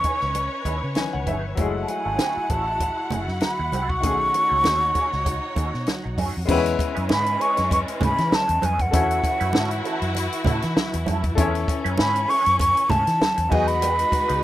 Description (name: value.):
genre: lush 1970s-style soul.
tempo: 98 BPM.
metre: 4/4.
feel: swing 54% on 16ths.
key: E major.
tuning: A4 = 439 Hz.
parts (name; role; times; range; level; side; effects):
mellow hollow concert flute; melody; 0.0-14.4 s; F#5 to C#6; -22 LUFS; equal; none.
clear concert grand piano; accompaniment; 0.0-14.4 s; D#3 to B5; -28 LUFS; left 6 dB; none.
warm studio string section; sustained chords; 0.0-14.4 s; E3 to F#5; -30 LUFS; left 1 dB; none.
electric guitar through a small old amp; riff; 0.0-14.4 s; D#3 to B4; -32 LUFS; right 6 dB; wah, phaser.
compact cocktail drum kit; drums; 0.0-14.4 s; crash cymbal, hi-hat, kick drum, snare drum; -25 LUFS; equal; none.
vintage muted fingered electric bass; bass; 0.2-14.4 s; F#1 to E3; -27 LUFS; equal; none.
congas; percussion; 0.3-14.3 s; none; -30 LUFS; right 4 dB; none.
room: little or no reverb.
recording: rough home demo mix.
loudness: -20 LUFS.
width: side -14 dB against mid.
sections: 0.0-6.5 A section; 6.5-14.4 B section.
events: grand piano fill 0.4-1.6.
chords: 0.0 C#m9; 1.6 F#m9; 4.0 B13; 6.5 E6; 8.9 F#m7/E; 11.4 Amaj7/E; 13.5 G#m7.